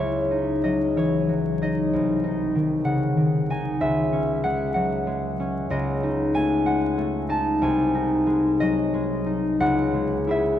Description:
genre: classical, solo harp piece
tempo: 63 BPM (dotted quarters)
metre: 6/8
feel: uneven beats, rubato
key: C# minor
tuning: A4 = 438 Hz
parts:
  - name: concert harp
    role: solo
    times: 0.0-10.6 s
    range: C2 to A5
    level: -21 LUFS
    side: left 1 dB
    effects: none
room: wet cathedral reverb, RT60 6.5 s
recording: dark, warm production, vinyl crackle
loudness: -21 LUFS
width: side -11 dB against mid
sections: 0.0-10.6 A section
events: none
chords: 0.0 C#sus24; 1.9 Cdim; 3.8 C#m; 5.7 D#m7b5/C#; 7.6 G#/B#; 9.6 C#m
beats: | 0.01 0.99 | 1.94 2.87 | 3.82 4.76 | 5.71 6.65 | 7.60 8.60 | 9.59

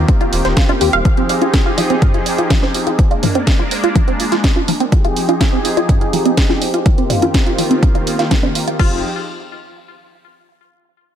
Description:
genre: progressive house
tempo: 124 BPM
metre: 4/4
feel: straight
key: F dorian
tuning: A4 = 439 Hz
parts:
  - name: filtered supersaw swell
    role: sustained chords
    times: 0.0-9.0 s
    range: Eb3 to Ab4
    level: -19 LUFS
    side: equal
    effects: sidechain pumping
  - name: dark detuned saw bass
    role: bass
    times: 0.0-1.0, 8.8-9.0 s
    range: Eb1 to Eb2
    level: -19 LUFS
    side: equal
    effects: tube saturation, sidechain pumping
  - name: electronic kick drum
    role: drums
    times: 0.1-8.9 s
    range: none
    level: -14 LUFS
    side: equal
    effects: overdrive
  - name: house drum kit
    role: drums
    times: 0.1-8.9 s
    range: crash cymbal, hi-hat, snare drum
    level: -22 LUFS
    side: right 1 dB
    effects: overdrive
  - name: electronic congas, bongos and toms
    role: percussion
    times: 0.1-8.5 s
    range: none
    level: -23 LUFS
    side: right 3 dB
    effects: sidechain pumping on perc, sidechain pumping on toms
  - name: tight sequenced synth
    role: arpeggios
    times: 0.2-9.0 s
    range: F3 to F5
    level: -19 LUFS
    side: right 1 dB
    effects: chorus, phaser, sidechain pumping, tape echo
room: digital ambience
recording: none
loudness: -12 LUFS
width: side -9 dB against mid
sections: 0.0-8.8 A section; 8.8-10.7 B section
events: filter sweep on synth arpeggio sound 0.0-8.8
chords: 0.0 Eb6; 1.1 Fm7; 3.0 Bb7; 4.9 Fm7; 6.9 Eb6; 8.8 Fm7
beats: 0.08 0.57 | 1.05 1.53 2.02 2.50 | 2.99 3.47 3.96 4.44 | 4.92 5.41 5.89 6.37 | 6.86 7.34 7.83 8.31 | 8.79

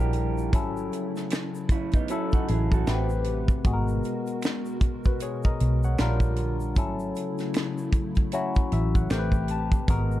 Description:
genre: R&B, neo-soul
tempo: 77 BPM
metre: 4/4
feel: swing 58% on 16ths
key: unclear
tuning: A4 = 440 Hz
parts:
  - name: electric guitar through a small old amp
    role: second line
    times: 0.0-3.1 s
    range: B3 to A4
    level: -34 LUFS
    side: right 7 dB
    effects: analog delay
  - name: barky tine electric piano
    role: accompaniment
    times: 0.0-10.2 s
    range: E#3 to A5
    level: -30 LUFS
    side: left 3 dB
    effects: overdrive, phaser
  - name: hollow soft pad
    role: sustained chords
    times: 0.0-10.2 s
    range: B2 to B4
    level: -36 LUFS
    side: equal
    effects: ensemble chorus
  - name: vintage muted fingered electric bass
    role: bass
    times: 0.0-10.2 s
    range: G#1 to B1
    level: -26 LUFS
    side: equal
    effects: none
  - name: tight funk drum kit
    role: drums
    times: 0.1-10.1 s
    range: hi-hat, kick drum, snare drum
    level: -24 LUFS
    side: equal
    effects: none
  - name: egg shaker and finger snaps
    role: percussion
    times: 0.4-10.2 s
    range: none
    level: -46 LUFS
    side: equal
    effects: none
room: small room ambience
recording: dark, warm production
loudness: -23 LUFS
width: side -14 dB against mid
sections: 0.0-10.2 A section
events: tine electric piano fill 8.3-9.9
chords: 0.0 A#6; 0.5 A6/G#; 2.9 Am9; 3.6 G#m9; 6.0 A#6; 6.8 A6/G#; 9.1 Am9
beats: | 0.53 1.31 2.09 2.87 | 3.65 4.43 5.21 5.99 | 6.76 7.54 8.32 9.10 | 9.88

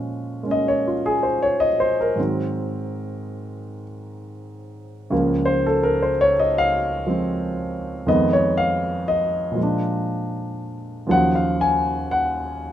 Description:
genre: solo jazz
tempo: 80 BPM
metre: 4/4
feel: swing 68% on 8ths, rubato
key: Bb minor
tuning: A4 = 444 Hz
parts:
  - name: warm grand piano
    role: solo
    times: 0.0-12.7 s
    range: Db2 to Ab5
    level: -20 LUFS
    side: equal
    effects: none
room: light reverb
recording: minimal, uncompressed stereo recording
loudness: -19 LUFS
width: side -11 dB against mid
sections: 0.0-12.7 A section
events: grand piano solo 0.0-12.7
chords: 0.0 Bbm7; 2.2 Ab7; 5.1 Db6; 8.1 Fm7b5; 9.6 Bb7; 11.1 Ebm9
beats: 0.69 1.43 | 2.18 2.92 3.65 4.39 | 5.12 5.85 6.59 7.33 | 8.07 8.82 9.57 10.33 | 11.09 11.84 12.59

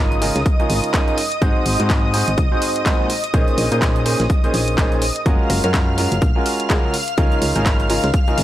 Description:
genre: piano house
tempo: 125 BPM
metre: 4/4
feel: swing 58% on 16ths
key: Db major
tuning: A4 = 439 Hz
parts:
  - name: analog string pad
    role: sustained chords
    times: 0.0-8.4 s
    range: Eb5 to F6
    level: -24 LUFS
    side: equal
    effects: ensemble chorus, sidechain pumping
  - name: clear baby grand piano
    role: riff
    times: 0.0-8.4 s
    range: Ab2 to C5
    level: -22 LUFS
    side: right 1 dB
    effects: sidechain pumping, tape echo
  - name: solid FM bass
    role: bass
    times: 0.0-8.4 s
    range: Gb1 to Bb2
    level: -21 LUFS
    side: equal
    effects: sidechain pumping
  - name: breakbeat sampler-style drum kit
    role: drums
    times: 0.1-8.4 s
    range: hi-hat, snare drum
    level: -34 LUFS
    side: equal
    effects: none
  - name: house drum kit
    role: drums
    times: 0.2-8.4 s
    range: handclaps, hi-hat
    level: -25 LUFS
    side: equal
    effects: overdrive
  - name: electronic kick drum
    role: drums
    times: 0.5-8.2 s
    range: none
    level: -18 LUFS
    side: equal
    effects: overdrive
  - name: mallet-like synth pluck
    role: melody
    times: 5.5-8.1 s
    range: F4 to Bb4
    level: -29 LUFS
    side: left 1 dB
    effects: chorus, tape echo
room: digital ambience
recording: dry, gritty hardware recording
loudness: -15 LUFS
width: side -13 dB against mid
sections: 0.0-8.4 A section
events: none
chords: 0.0 Db69; 1.2 Ab7; 3.1 Bbm11; 5.3 Gbmaj9; 6.9 Db69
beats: 0.46 0.94 | 1.42 1.90 2.38 2.86 | 3.34 3.82 4.30 4.78 | 5.26 5.74 6.22 6.70 | 7.18 7.66 8.14

